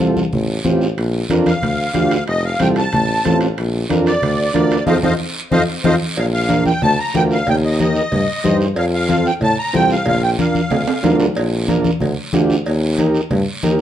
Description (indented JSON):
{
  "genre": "latin, cumbia",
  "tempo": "185 BPM",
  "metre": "4/4",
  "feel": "straight",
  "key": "Bb major",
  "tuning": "A4 = 440 Hz",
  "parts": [
    { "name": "combo organ", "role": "accompaniment", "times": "0.0-13.8 s", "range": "C4 to C5", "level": "-20 LUFS", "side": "right 3 dB", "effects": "none" },
    { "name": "clear tuba", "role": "bass", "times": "0.0-13.8 s", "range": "F1 to A2", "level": "-19 LUFS", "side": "left 1 dB", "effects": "none" },
    { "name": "congas", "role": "percussion", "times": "0.0-13.8 s", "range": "none", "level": "-21 LUFS", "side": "left 2 dB", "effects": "none" },
    { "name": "guiro", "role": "percussion", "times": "0.0-13.8 s", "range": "none", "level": "-31 LUFS", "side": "right 3 dB", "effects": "none" },
    { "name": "timbales and cowbell", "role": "percussion", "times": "1.0-13.8 s", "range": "none", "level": "-26 LUFS", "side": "right 4 dB", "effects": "none" },
    { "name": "musette accordion", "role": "melody", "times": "1.5-11.2 s", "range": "C5 to Bb5", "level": "-19 LUFS", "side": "equal", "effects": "plate reverb" }
  ],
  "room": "moderate studio reverb, RT60 0.9 s",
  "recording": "dark, warm production",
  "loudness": "-14 LUFS",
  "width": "side -11 dB against mid",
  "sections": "0.0-6.2 A section; 6.2-13.8 B section",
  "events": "band accent 4.9-6.2; drum fill 5.7-6.2, 10.7-11.4",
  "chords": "0.0 F; 1.0 Bb; 2.3 F; 3.6 Bb; 4.9 F7; 6.2 Bb; 7.5 Eb; 8.8 F; 10.1 Bb; 12.7 Eb"
}